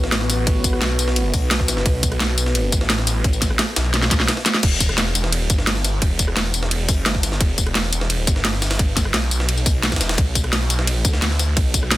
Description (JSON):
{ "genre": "dark technical drum and bass", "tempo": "173 BPM", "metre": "4/4", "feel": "straight", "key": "E minor", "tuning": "A4 = 440 Hz", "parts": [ { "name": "dark analog pad", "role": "sustained chords", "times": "0.0-4.6 s", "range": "B3 to B4", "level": "-27 LUFS", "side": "equal", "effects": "chorus, sidechain pumping" }, { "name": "snarling distorted saw bass", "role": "bass", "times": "0.0-12.0 s", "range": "E1 to D2", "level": "-22 LUFS", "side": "equal", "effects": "distortion, overdrive, sidechain pumping" }, { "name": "breakbeat sampler-style drum kit", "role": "drums", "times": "0.0-12.0 s", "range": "hi-hat, ride cymbal, snare drum", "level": "-28 LUFS", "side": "right 1 dB", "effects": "high-pass filter on cymbals, high-pass filter on snare, high-pass filter on hats" }, { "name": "drum and bass drum kit", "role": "drums", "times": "0.1-12.0 s", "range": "crash cymbal, hi-hat, ride cymbal, rim click, snare drum, tambourine", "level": "-21 LUFS", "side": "equal", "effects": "overdrive" }, { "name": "electronic kick drum", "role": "drums", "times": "0.5-11.8 s", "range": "none", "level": "-20 LUFS", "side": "equal", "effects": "overdrive" } ], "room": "little or no reverb", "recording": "dense, heavily limited modern master", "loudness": "-17 LUFS", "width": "side -16 dB against mid", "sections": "0.0-4.6 A section; 4.6-12.0 A section", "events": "drop 0.0-4.6, 4.6-12.0; drum fill 3.9-4.6", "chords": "0.0 B5; 4.6 Em; 10.2 Bm", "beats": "0.12 | 0.47 0.82 1.16 1.51 | 1.86 2.20 2.55 2.90 | 3.24 3.59 3.94 4.28 | 4.63 4.98 5.33 5.67 | 6.02 6.37 6.71 7.06 | 7.41 7.75 8.10 8.45 | 8.79 9.14 9.49 9.83 | 10.18 10.53 10.87 11.22 | 11.57 11.91" }